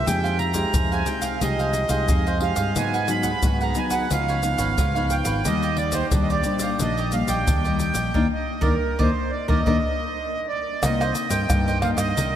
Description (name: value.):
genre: samba and choro.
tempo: 89 BPM.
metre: 4/4.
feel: straight.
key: Eb major.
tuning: A4 = 441 Hz.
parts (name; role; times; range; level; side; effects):
accordion; melody; 0.0-12.4 s; Bb4 to Cb6; -26 LUFS; right 4 dB; diffuse ambient delay.
cavaquinho; accompaniment; 0.0-12.3 s; D4 to Gb5; -30 LUFS; right 4 dB; none.
nylon-string guitar; accompaniment; 0.0-12.4 s; G2 to G4; -27 LUFS; left 4 dB; none.
fretless electric bass; bass; 0.0-12.4 s; Ab1 to Ab2; -26 LUFS; equal; none.
tube shaker, surdo, pandeiro and tamborim; percussion; 0.1-12.3 s; none; -25 LUFS; equal; none.
room: wet cathedral reverb, RT60 5.1 s.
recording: dreamy mix soaked in reverb.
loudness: -20 LUFS.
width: side -10 dB against mid.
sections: 0.0-10.8 A section; 10.8-12.4 B section.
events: band accent 8.1-10.8.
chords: 0.1 Fm9; 2.8 Abm7; 4.1 Db9; 5.5 Ebmaj7; 10.8 Cm9.